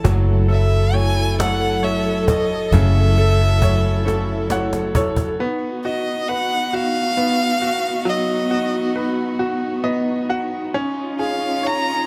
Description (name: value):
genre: six-eight pop ballad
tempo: 45 BPM (dotted quarters)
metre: 6/8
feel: straight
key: unclear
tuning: A4 = 441 Hz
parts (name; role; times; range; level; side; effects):
- warm violin; melody; 0.0-12.1 s; D#5 to A#5; -25 LUFS; equal; tape echo
- bright grand piano; accompaniment; 0.0-12.1 s; C#3 to F#5; -26 LUFS; equal; none
- warm studio string section; sustained chords; 0.0-12.1 s; F#3 to A4; -27 LUFS; equal; none
- mellow electric guitar; arpeggios; 0.0-5.4 s; F#3 to C#5; -30 LUFS; equal; none
- vintage muted fingered electric bass; bass; 0.0-5.4 s; F#1; -20 LUFS; equal; none
- cajon; drums; 0.0-5.4 s; none; -25 LUFS; equal; none
room: small room reverb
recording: none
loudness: -19 LUFS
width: mono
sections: 0.0-5.4 A section; 5.4-12.1 A section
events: drum fill 4.1-5.4; grand piano fill 4.1-5.4, 9.4-10.7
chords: 0.0 F#m7; 5.4 B; 10.7 C#add9